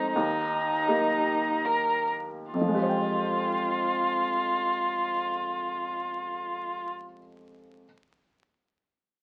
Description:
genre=neoclassical piano and strings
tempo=free time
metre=none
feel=none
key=F minor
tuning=A4 = 441 Hz
part: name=muted violin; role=melody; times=0.0-6.9 s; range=Eb4 to Bb4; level=-29 LUFS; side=equal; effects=none
part: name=felt-muted upright piano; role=accompaniment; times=0.0-7.9 s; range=Eb2 to G5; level=-33 LUFS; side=equal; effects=none
room=moderate studio reverb, RT60 0.5 s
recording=very old 78 rpm record, vinyl crackle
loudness=-28 LUFS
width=mono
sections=0.0-2.5 A section; 2.5-7.8 B section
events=slowing down 0.0-2.5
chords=0.1 Eb; 2.5 Fmadd9

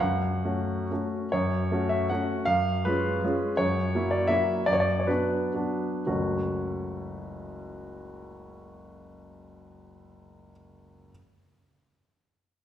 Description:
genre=classical, romantic triple-time dance for piano with dotted rhythms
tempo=106-176 BPM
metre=3/4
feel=rubato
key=F# minor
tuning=A4 = 440 Hz
part: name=clear baby grand piano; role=solo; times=0.0-11.1 s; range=F#1 to F#5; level=-26 LUFS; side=equal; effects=none
room=wet recital hall reverb, RT60 1.4 s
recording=heard from further back in the room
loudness=-24 LUFS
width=side -10 dB against mid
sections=0.0-1.3 A section; 1.3-6.1 B section; 6.1-9.0 C section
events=slowing down 3.0-6.1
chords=0.0 F#m; 2.5 C#7/F#; 3.6 F#7; 4.7 Bm/F#; 6.1 F#m

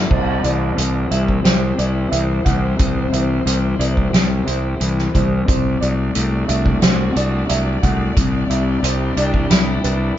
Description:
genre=post-rock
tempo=89 BPM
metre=4/4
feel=straight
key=C lydian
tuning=A4 = 440 Hz
part: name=dark chamber string section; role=sustained chords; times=0.0-10.2 s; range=G3 to D5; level=-29 LUFS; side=left 1 dB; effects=none
part: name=clean electric guitar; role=arpeggios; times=0.0-10.2 s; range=C3 to G4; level=-24 LUFS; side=left 3 dB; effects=none
part: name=felt-muted upright piano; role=arpeggios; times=0.0-10.2 s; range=B4 to F#5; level=-26 LUFS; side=right 4 dB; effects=none
part: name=fuzz fingered electric bass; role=bass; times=0.0-10.1 s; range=C2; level=-19 LUFS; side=equal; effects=overdrive
part: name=soft-mallet drum kit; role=drums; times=0.1-10.0 s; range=crash cymbal, hi-hat, kick drum, snare drum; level=-19 LUFS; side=equal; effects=none
room=moderate studio reverb, RT60 0.6 s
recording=band playing live in one room, nothing above 7.4 kHz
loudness=-15 LUFS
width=side -11 dB against mid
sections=0.1-10.2 A section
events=none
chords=0.1 C; 5.5 D/C; 8.2 Em7/C

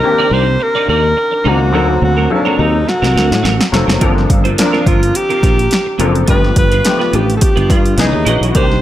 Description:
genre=polished 1980s jazz-funk pop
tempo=106 BPM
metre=4/4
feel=swing 54% on 16ths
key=G minor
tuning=A4 = 436 Hz
part: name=warm alto saxophone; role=melody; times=0.0-8.8 s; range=D4 to C5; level=-16 LUFS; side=equal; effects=none
part: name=warm concert grand piano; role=accompaniment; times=0.0-8.8 s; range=Eb3 to Bb4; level=-18 LUFS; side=left 3 dB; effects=ensemble chorus
part: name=semi-hollow electric guitar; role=riff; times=0.0-8.8 s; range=C4 to D#5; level=-20 LUFS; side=right 6 dB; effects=ensemble chorus
part: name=sustaining fretless electric bass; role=bass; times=0.3-8.8 s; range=F1 to A2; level=-15 LUFS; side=equal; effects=ensemble chorus
part: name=punchy analog drum machine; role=drums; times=2.9-8.8 s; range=hi-hat, kick drum, snare drum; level=-14 LUFS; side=equal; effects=overdrive
room=light reverb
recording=none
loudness=-10 LUFS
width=side -13 dB against mid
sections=0.0-8.8 A section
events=drum fill 2.9-4.0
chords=0.0 Cm9; 1.7 D7b9b13; 4.0 Gm11; 6.3 G7; 8.0 C#m9

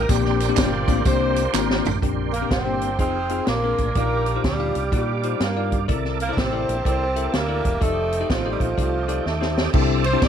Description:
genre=uptempo gospel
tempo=124 BPM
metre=4/4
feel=swing 64% on 8ths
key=Bb major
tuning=A4 = 441 Hz
part: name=warm horn section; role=melody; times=0.0-10.3 s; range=A3 to D5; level=-28 LUFS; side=left 2 dB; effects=none
part: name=tonewheel organ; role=sustained chords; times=0.0-10.3 s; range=G4 to D6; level=-30 LUFS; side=right 12 dB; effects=fast rotary speaker, chorus vibrato
part: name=fingered electric bass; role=bass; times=0.0-10.3 s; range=E1 to Bb2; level=-26 LUFS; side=right 1 dB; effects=none
part: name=bell-like tine electric piano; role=accompaniment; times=0.1-10.3 s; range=Bb2 to F5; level=-26 LUFS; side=left 12 dB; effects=fast stereo tremolo
part: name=swinging big-band drum kit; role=drums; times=0.1-10.3 s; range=crash cymbal, hi-hat, kick drum, ride cymbal, snare drum, toms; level=-24 LUFS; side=right 1 dB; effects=none
part: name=tambourine and handclaps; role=percussion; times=0.1-1.9 s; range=none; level=-31 LUFS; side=right 16 dB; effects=none
part: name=breathy tenor saxophone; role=melody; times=2.3-9.7 s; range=F3 to D4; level=-27 LUFS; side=right 4 dB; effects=none
room=light reverb, small room ambience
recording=1960s-style stereo with parts hard left and right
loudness=-19 LUFS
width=side -8 dB against mid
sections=0.0-2.0 A section; 2.0-9.7 B section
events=drum fill 1.5-2.0, 9.3-9.7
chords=0.1 Bb69; 3.0 Fm7; 3.5 Bb9; 4.0 Ebmaj9/Bb; 5.9 C13; 7.8 F13; 9.7 C69

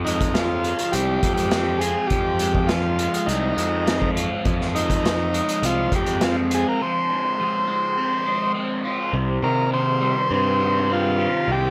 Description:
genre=psychedelic rock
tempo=102 BPM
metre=4/4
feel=straight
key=unclear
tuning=A4 = 438 Hz
part: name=combo organ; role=melody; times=0.0-11.7 s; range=Eb4 to C5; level=-26 LUFS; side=equal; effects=tape echo
part: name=crunchy overdriven guitar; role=riff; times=0.0-11.7 s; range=C3 to G4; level=-28 LUFS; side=equal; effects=phaser
part: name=fuzz picked electric bass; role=bass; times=0.0-11.7 s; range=C2 to C3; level=-27 LUFS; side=equal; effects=overdrive
part: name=vintage drum kit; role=drums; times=0.1-6.6 s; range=hi-hat, kick drum, snare drum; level=-28 LUFS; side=equal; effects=none
room=small room ambience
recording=none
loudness=-22 LUFS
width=mono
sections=0.0-9.1 A section; 9.1-11.7 B section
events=none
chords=0.0 Fm; 9.1 Cm

